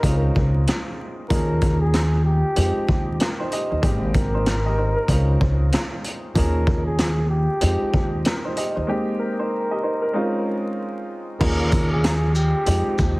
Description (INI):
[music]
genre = hip hop, boom-bap hip-hop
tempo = 95 BPM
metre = 4/4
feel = swing 62% on 16ths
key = unclear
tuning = A4 = 440 Hz
[part]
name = trumpet with bucket mute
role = melody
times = 0.0-13.2 s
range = G4 to Bb4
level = -27 LUFS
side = equal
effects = high-pass filter, low-pass filter, tape echo
[part]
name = warm upright piano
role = accompaniment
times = 0.0-13.2 s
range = F3 to Eb5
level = -26 LUFS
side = equal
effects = cassette tape, high-pass filter, low-pass filter
[part]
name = upright bass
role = bass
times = 0.0-13.2 s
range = Ab1 to F2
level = -21 LUFS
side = equal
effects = none
[part]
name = raw garage drum kit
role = drums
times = 0.0-13.2 s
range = crash cymbal, hi-hat, kick drum, rim click, shaker, snare drum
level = -23 LUFS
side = equal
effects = none
[sound]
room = light reverb, small room ambience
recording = heavily compressed radio sound, multiband compression, vinyl crackle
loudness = -19 LUFS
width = side -23 dB against mid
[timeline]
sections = 0.0-11.4 A section; 11.4-13.2 B section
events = break 8.9-11.4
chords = 0.0 Dbmaj9; 1.3 Eb9sus4; 2.6 Fm9; 3.8 Abmaj9; 5.1 Dbmaj9; 6.4 Eb9sus4; 7.6 Fm9; 8.9 Abmaj9; 10.1 Dbmaj9; 11.4 Eb9sus4; 12.7 Fm9